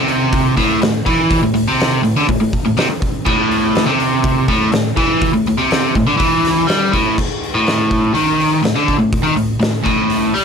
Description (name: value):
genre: garage rock duo or trio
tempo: 123 BPM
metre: 4/4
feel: straight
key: unclear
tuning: A4 = 438 Hz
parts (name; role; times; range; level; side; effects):
- biting overdriven guitar; riff; 0.0-10.4 s; A2 to G3; -14 LUFS; equal; none
- oversized low-tuned drum kit; drums; 0.1-10.4 s; crash cymbal, hi-hat, kick drum, snare drum; -19 LUFS; equal; none
room: moderate club reverb, RT60 0.5 s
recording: none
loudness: -13 LUFS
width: side -6 dB against mid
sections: 0.0-7.2 A section; 7.2-10.4 B section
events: none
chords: none